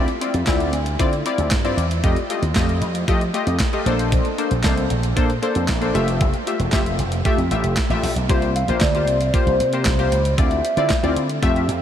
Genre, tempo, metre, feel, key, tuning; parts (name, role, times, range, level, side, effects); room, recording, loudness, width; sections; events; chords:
early-eighties boogie funk; 115 BPM; 4/4; straight; D minor; A4 = 440 Hz
funky polysynth comp; accompaniment; 0.0-11.7 s; A3 to E5; -22 LUFS; left 2 dB; chorus
slap bass with an envelope filter; bass; 0.0-11.8 s; E1 to F3; -22 LUFS; right 1 dB
crisp 8-bit digital drum machine; drums; 0.1-11.8 s; handclaps, hi-hat, kick drum, snare drum; -22 LUFS; right 1 dB
hollow clarinet-like synth lead; melody; 8.6-11.4 s; C5 to F5; -22 LUFS; equal; chorus, ping-pong delay
moderate huge ambient reverb, RT60 7.2 s; dreamy mix soaked in reverb; -17 LUFS; side -10 dB against mid
0.0-8.3 A section; 8.3-11.8 B section
0.0 Dm9; 2.0 F9; 3.9 Bbmaj9; 5.9 Fmaj9; 8.3 C7sus4; 10.4 Dm9